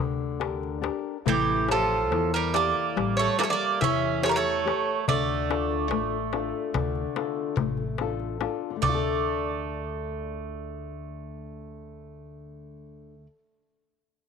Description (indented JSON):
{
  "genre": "greek folk, Greek bouzouki band",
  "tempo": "144 BPM (eighths)",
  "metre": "9/8",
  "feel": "straight",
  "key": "D harmonic minor",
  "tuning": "A4 = 440 Hz",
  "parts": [
    { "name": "flamenco guitar", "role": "accompaniment", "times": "0.0-13.4 s", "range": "D3 to E5", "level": "-31 LUFS", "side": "left 11 dB", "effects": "none" },
    { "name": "upright bass", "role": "bass", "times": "0.0-13.3 s", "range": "A1 to E2", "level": "-35 LUFS", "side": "right 1 dB", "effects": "none" },
    { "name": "darbuka", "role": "percussion", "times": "0.4-9.2 s", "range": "none", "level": "-30 LUFS", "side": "left 6 dB", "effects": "none" },
    { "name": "Greek bouzouki", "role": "melody", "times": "1.3-13.3 s", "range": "G4 to E5", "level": "-27 LUFS", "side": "right 3 dB", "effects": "none" },
    { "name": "Greek bouzouki", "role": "second line", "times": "1.3-13.3 s", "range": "E3 to C#4", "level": "-31 LUFS", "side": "right 12 dB", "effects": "none" }
  ],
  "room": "light reverb, small room reverb",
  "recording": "1960s-style stereo with parts hard left and right",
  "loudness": "-24 LUFS",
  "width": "side -6 dB against mid",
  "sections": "0.0-8.8 A section; 8.8-12.5 B section",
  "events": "speeding up 0.0-12.5",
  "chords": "0.0 Gm; 1.3 A7; 5.1 Dm; 8.8 D5",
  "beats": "0.40 0.83 | 1.26 1.69 2.11 2.54 2.96 3.39 3.81 4.23 4.65 | 5.07 5.49 5.91 6.33 6.75 7.17 7.58 8.00 8.41 | 8.82 9.24 9.65 10.06 10.47 10.88 11.29 11.70 12.11"
}